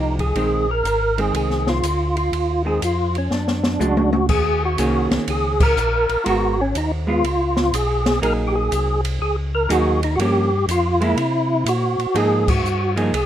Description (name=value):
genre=soul jazz organ trio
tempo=122 BPM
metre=4/4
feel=swing 67% on 8ths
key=Bb mixolydian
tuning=A4 = 440 Hz
part: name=percussive tonewheel organ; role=melody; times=0.0-13.3 s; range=Db4 to Bb4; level=-20 LUFS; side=equal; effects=slow rotary speaker, overdrive, chorus vibrato, plate reverb
part: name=vintage hollow-body jazz guitar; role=accompaniment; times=0.0-13.1 s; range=Eb3 to Bb4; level=-23 LUFS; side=right 2 dB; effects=plate reverb
part: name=mellow tonewheel organ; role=bass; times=0.0-13.3 s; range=Ab1 to C3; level=-23 LUFS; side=equal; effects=slow rotary speaker
part: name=open jazz drum kit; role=drums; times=0.2-13.3 s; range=crash cymbal, hi-hat, kick drum, ride cymbal, snare drum, toms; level=-25 LUFS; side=equal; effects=none
room=light reverb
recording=rough home demo mix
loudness=-17 LUFS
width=side -11 dB against mid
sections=0.0-4.3 A section; 4.3-13.3 B section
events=drum fill 3.3-4.3; band accent 5.5, 12.4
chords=0.4 Bb9sus4; 3.3 Dmaj7#11; 4.3 Eb7sus4; 6.3 Abm9; 7.2 Db7; 8.2 Gb69; 10.2 Gm7b5; 11.2 Gb7#11; 12.2 Fm11